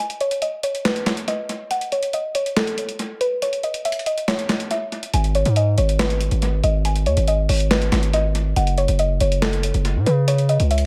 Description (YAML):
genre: hip hop, trap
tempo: 140 BPM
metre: 4/4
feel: half-time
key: G# phrygian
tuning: A4 = 440 Hz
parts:
  - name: mallet-like synth pluck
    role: melody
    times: 0.0-10.9 s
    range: A4 to G#5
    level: -25 LUFS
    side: equal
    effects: chorus, low-pass filter, tape echo
  - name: dusty soul sampler-style drum kit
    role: drums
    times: 0.1-10.8 s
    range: handclaps, hi-hat, snare drum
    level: -27 LUFS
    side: equal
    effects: tape echo
  - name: distorted 808-style bass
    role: bass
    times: 5.1-10.9 s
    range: F#1 to C#3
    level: -21 LUFS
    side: equal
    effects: distortion
room: light reverb, digital ambience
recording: echo-heavy mix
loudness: -21 LUFS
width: mono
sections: 0.0-10.9 A section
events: break 0.0-5.1; filter sweep on synth pluck 0.0-10.9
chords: 0.0 N.C.; 5.1 G#m; 8.6 F#m; 10.3 C#m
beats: 0.42 0.85 1.28 | 1.71 2.14 2.56 2.99 | 3.42 3.85 4.28 4.71 | 5.14 5.57 5.99 6.42 | 6.85 7.28 7.71 8.14 | 8.56 8.99 9.42 9.85 | 10.28 10.71